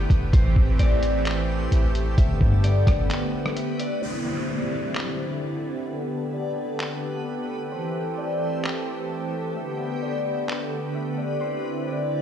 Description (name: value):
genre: hip hop, atmospheric cloud-rap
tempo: 130 BPM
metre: 4/4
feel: half-time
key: C major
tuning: A4 = 440 Hz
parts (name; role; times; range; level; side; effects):
- Celtic harp; melody; 0.0-12.2 s; C5 to E5; -32 LUFS; left 3 dB; low-pass filter, tape echo
- warm analog pad; sustained chords; 0.0-12.2 s; D3 to A4; -28 LUFS; right 1 dB; chorus, tremolo, sidechain pumping, low-pass filter
- warm 808-style bass; bass; 0.0-3.1 s; G1 to G2; -21 LUFS; equal; none
- backwards swelling texture; texture; 0.0-12.2 s; A3 to D5; -37 LUFS; left 1 dB; built-in reverb
- lo-fi sampler-style drum kit; drums; 0.1-10.6 s; handclaps, hi-hat, kick drum, rim click; -23 LUFS; equal; none
- downlifter; sound effects; 4.0-7.7 s; none; -33 LUFS; equal; none
room: light reverb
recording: played on a big sound system in a bare room, large studio reverb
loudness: -22 LUFS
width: side -10 dB against mid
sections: 0.0-4.0 A section; 4.0-12.2 B section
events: break 3.1-4.0; filter sweep 4.0-12.2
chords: 0.3 Am7; 2.2 Gadd9; 4.0 Cadd9; 5.9 Gadd9; 7.7 Am7; 9.6 Gadd9; 11.4 Cadd9